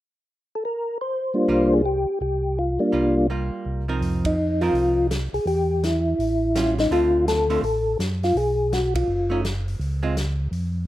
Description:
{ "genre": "soul jazz organ trio", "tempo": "166 BPM", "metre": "4/4", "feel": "swing 63% on 8ths", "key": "unclear", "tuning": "A4 = 441 Hz", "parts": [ { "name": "percussive tonewheel organ", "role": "melody", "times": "0.6-9.4 s", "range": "G3 to C5", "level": "-21 LUFS", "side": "left 1 dB", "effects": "slow rotary speaker, chorus vibrato" }, { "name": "archtop guitar, miked and amplified", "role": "accompaniment", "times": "1.5-10.2 s", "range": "D3 to Bb4", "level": "-28 LUFS", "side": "right 4 dB", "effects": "none" }, { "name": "mellow tonewheel organ", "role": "bass", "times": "1.5-10.9 s", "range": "F#1 to Gb2", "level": "-25 LUFS", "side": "equal", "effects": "chorus vibrato, slow rotary speaker" }, { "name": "vintage drum kit", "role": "drums", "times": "4.0-10.6 s", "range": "hi-hat, kick drum, ride cymbal, snare drum", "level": "-32 LUFS", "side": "equal", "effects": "none" } ], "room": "light reverb", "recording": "rough home demo mix", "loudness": "-20 LUFS", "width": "side -14 dB against mid", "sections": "0.0-1.1 A section; 1.1-4.0 B section; 4.0-10.9 C section", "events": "band accent 4.2, 8.9", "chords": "0.0 N.C.; 1.1 C7sus4; 4.0 F7sus4; 5.5 Em; 6.2 A7b13; 6.9 Dm7; 8.4 B5; 9.8 Db", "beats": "0.04 0.40 0.76 | 1.12 1.49 1.85 2.21 | 2.57 2.93 3.29 3.66 | 4.02 4.38 4.74 5.10 | 5.46 5.83 6.19 6.55 | 6.91 7.27 7.63 7.99 | 8.36 8.72 9.08 9.44 | 9.80 10.16 10.52" }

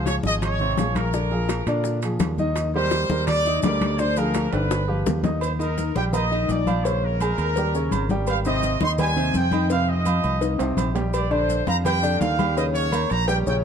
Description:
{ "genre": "latin, salsa", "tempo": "168 BPM", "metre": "4/4", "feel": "straight", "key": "unclear", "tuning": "A4 = 441 Hz", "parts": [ { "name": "bright trumpet section", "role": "melody", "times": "0.0-13.6 s", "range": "Bb4 to C6", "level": "-26 LUFS", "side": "right 1 dB", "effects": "none" }, { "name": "clear baby grand piano", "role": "accompaniment", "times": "0.0-13.6 s", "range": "C3 to Bb5", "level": "-26 LUFS", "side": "left 1 dB", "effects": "none" }, { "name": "fingered electric bass", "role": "bass", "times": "0.0-13.6 s", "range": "G1 to Bb2", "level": "-24 LUFS", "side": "equal", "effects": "none" }, { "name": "bongos and cowbell", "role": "percussion", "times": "0.1-13.5 s", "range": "none", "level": "-32 LUFS", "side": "left 6 dB", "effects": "none" }, { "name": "congas", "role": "percussion", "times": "0.1-13.6 s", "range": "none", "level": "-30 LUFS", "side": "left 3 dB", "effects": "none" }, { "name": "maracas", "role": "percussion", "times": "0.1-13.6 s", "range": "none", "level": "-42 LUFS", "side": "left 6 dB", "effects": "none" }, { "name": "timbales and agogo bells", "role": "percussion", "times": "0.1-13.3 s", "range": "none", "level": "-33 LUFS", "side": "right 9 dB", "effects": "none" } ], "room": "moderate plate reverb, RT60 3.3 s", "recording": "dark, warm production", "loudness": "-20 LUFS", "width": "side -7 dB against mid", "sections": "0.0-5.4 A section; 5.4-13.6 B section", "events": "drum fill 4.5-5.4, 10.6-11.1", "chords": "0.0 Dbmaj7; 1.1 Bb7; 2.6 Ebmaj7; 4.0 Ddim; 4.7 G7; 5.4 Ebmaj7; 6.8 Bbm7; 7.6 Eb7; 8.3 Abmaj7; 9.7 F5; 11.1 Bb69; 12.6 Eb7", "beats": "0.07 0.42 0.78 | 1.14 1.49 1.85 2.21 | 2.56 2.92 3.28 3.63 | 3.99 4.35 4.71 5.06 | 5.42 5.78 6.13 6.49 | 6.85 7.21 7.56 7.92 | 8.28 8.63 8.99 9.35 | 9.71 10.07 10.42 10.78 | 11.14 11.50 11.86 12.21 | 12.57 12.93 13.29" }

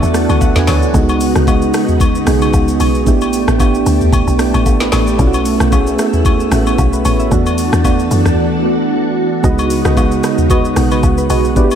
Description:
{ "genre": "amapiano", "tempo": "113 BPM", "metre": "4/4", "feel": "swing 55% on 16ths", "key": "C# phrygian", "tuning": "A4 = 440 Hz", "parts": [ { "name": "soft electric-piano-like synth keys", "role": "accompaniment", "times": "0.0-11.8 s", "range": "G#3 to A5", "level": "-16 LUFS", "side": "right 4 dB", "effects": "chorus" }, { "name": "ensemble organ-string", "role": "sustained chords", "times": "0.0-11.8 s", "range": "C#3 to A4", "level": "-18 LUFS", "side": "equal", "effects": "ensemble chorus, sidechain pumping" }, { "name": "woody log drum bass", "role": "bass", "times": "0.0-11.8 s", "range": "A1 to F#2", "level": "-16 LUFS", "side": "left 1 dB", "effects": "none" }, { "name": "smooth R&B drum kit", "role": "drums", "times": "0.0-11.8 s", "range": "hi-hat, kick drum, rim click, shaker, snare drum, toms", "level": "-16 LUFS", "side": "left 1 dB", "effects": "none" }, { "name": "agogo bells and woodblock", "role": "percussion", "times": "0.3-11.8 s", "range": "none", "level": "-24 LUFS", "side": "left 6 dB", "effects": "none" }, { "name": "deep mellow chord stab", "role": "stabs", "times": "9.4-11.8 s", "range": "F#4 to D#5", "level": "-20 LUFS", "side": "right 1 dB", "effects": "chorus, ping-pong delay" } ], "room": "moderate plate reverb, RT60 2.7 s", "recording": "dreamy mix soaked in reverb", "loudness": "-10 LUFS", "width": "side -8 dB against mid", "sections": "0.0-11.8 A section", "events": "synth keys fill 0.0-0.9; break 8.4-9.4", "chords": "0.0 E9sus4; 0.9 C#9sus4; 3.1 A9sus4; 5.2 B9sus4; 7.3 E9sus4; 9.4 C#9sus4", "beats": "0.41 | 0.94 1.47 2.00 2.54 | 3.07 3.60 4.13 4.66 | 5.19 5.72 6.25 6.78 | 7.31 7.84 8.38 8.91 | 9.44 9.97 10.50 11.03 | 11.56" }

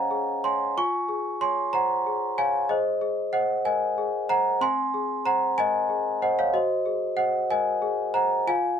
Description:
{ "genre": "classical, lullaby for celesta", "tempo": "62 BPM (dotted quarters)", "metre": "6/8", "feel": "rubato", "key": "unclear", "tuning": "A4 = 443 Hz", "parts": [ { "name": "large celesta", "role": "solo", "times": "0.0-8.8 s", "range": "C4 to Db6", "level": "-22 LUFS", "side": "equal", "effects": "none" } ], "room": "light reverb", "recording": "none", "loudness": "-22 LUFS", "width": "side -8 dB against mid", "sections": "0.0-8.8 A section", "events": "none", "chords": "0.0 Db; 0.8 Db/F; 2.7 Ab; 4.6 Ab/C; 6.5 Ab7/Gb", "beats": "| 0.76 1.73 | 2.69 3.66 | 4.62 5.58 | 6.54 7.50 | 8.47" }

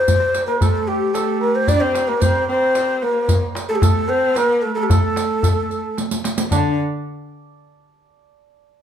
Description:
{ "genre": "Persian modal ensemble", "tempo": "112 BPM", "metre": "3/4", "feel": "straight", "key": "unclear", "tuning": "A4 = 438 Hz", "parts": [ { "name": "breathy mellow ney", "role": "melody", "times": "0.0-6.8 s", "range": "D4 to D5", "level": "-19 LUFS", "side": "left 1 dB", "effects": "none" }, { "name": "santur", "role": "second line", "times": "0.0-6.8 s", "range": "D4 to D5", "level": "-24 LUFS", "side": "right 5 dB", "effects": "none" }, { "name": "riq", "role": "percussion", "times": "0.1-6.8 s", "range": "none", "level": "-26 LUFS", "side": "right 3 dB", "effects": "none" }, { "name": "tombak", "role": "percussion", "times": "0.1-6.8 s", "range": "none", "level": "-19 LUFS", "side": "equal", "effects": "none" }, { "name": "dark cello", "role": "second line", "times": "0.5-6.8 s", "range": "D3 to D4", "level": "-25 LUFS", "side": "left 2 dB", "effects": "none" } ], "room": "wet large studio reverb, RT60 0.9 s", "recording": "band playing live in one room", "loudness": "-16 LUFS", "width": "side -9 dB against mid", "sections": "0.0-6.5 A section; 6.5-8.1 B section", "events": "drum fill 6.0-6.5", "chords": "none", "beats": "| 0.07 0.61 1.15 | 1.68 2.22 2.76 | 3.29 3.83 4.36 | 4.90 5.43 5.97 | 6.50" }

